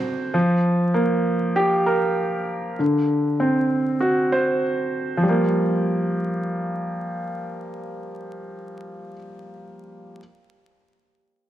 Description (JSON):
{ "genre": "hip hop", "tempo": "98 BPM", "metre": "4/4", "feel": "swing 63% on 16ths", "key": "G minor", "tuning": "A4 = 440 Hz", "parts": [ { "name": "dark concert grand piano", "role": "accompaniment", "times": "0.0-10.2 s", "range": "D3 to C5", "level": "-21 LUFS", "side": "equal", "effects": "high-pass filter, low-pass filter" } ], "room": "light reverb, small room ambience", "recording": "vinyl crackle", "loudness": "-19 LUFS", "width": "side -12 dB against mid", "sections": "0.0-5.2 A section; 5.2-7.7 B section", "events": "none", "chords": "0.3 Gm7; 2.8 D7; 5.2 Gm7" }